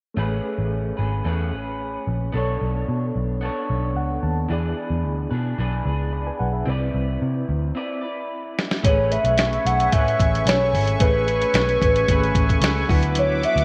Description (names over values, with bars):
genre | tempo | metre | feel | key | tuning
indie pop, bedroom pop | 111 BPM | 4/4 | straight | A major | A4 = 440 Hz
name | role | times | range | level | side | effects
reed electric piano | accompaniment | 0.1-13.6 s | F#3 to B5 | -33 LUFS | equal | fast tremolo, cassette tape
electric guitar through a small old amp | accompaniment | 0.2-13.6 s | D3 to D5 | -32 LUFS | equal | subtle chorus, vibrato effect
vintage muted picked electric bass | bass | 0.2-13.6 s | G#1 to C3 | -26 LUFS | equal | none
lo-fi sampler-style drum kit | drums | 8.6-13.6 s | hi-hat, kick drum, snare drum | -24 LUFS | equal | none
hollow clarinet-like synth lead | melody | 8.8-13.6 s | B4 to F#5 | -23 LUFS | equal | phaser, subtle chorus, slapback echo
phased analog pad | sustained chords | 9.1-13.6 s | B4 to D6 | -29 LUFS | equal | phaser, chorus
room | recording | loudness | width
light reverb, digital ambience | none | -22 LUFS | mono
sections
0.2-8.8 A section; 8.8-13.6 B section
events
reed electric piano fill 3.7-4.5; break 7.8-8.8; drum fill 7.8-8.8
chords
0.2 Amaj9; 2.3 Bm9; 4.5 E7; 6.7 Cmaj9; 8.8 Amaj9; 12.9 D69